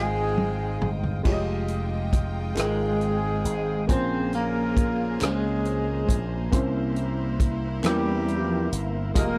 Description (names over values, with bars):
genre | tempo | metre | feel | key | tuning
slow gospel | 46 BPM (dotted quarters) | 6/8 | straight | F minor | A4 = 442 Hz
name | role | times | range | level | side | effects
clean electric guitar | melody | 0.0-9.4 s | G3 to Ab4 | -32 LUFS | equal | tremolo
warm horn section | melody | 0.0-9.4 s | G3 to C5 | -33 LUFS | equal | slapback echo
warm upright piano | accompaniment | 0.0-9.4 s | Bb2 to G5 | -33 LUFS | equal | none
bright studio string section | sustained chords | 0.0-9.4 s | Ab3 to G5 | -40 LUFS | equal | none
tonewheel organ | sustained chords | 0.0-9.4 s | Ab3 to Eb6 | -41 LUFS | equal | slow rotary speaker
slap bass with an envelope filter | bass | 0.0-9.4 s | F1 to E2 | -31 LUFS | equal | none
warm soul drum kit | drums | 0.4-9.4 s | crash cymbal, hi-hat, kick drum, rim click, toms | -27 LUFS | equal | none
group handclap | percussion | 2.6-8.2 s | none | -41 LUFS | equal | none
room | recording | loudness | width
little or no reverb | none | -25 LUFS | mono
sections
0.0-1.3 A section; 1.3-9.4 A section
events
drum fill 0.0-1.3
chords
0.0 Fm9; 3.9 Bbm9; 6.5 C7b9